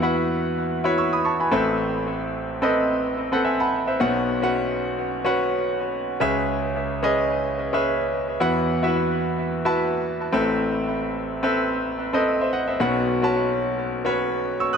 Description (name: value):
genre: pop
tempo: 109 BPM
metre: 4/4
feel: swing 55% on 16ths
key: E major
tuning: A4 = 440 Hz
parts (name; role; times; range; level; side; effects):
- bright concert grand piano; solo; 0.0-14.8 s; A1 to F#6; -20 LUFS; equal; tape echo
room: moderate lush hall reverb, RT60 2.9 s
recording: none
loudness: -20 LUFS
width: side -6 dB against mid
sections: 0.0-14.8 A section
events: grand piano fill 3.2-4.0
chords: 0.0 Esus2; 1.5 Amadd9; 4.0 Bsus2; 6.2 C#m7; 8.4 Esus2; 10.3 Amadd9; 12.8 Bsus2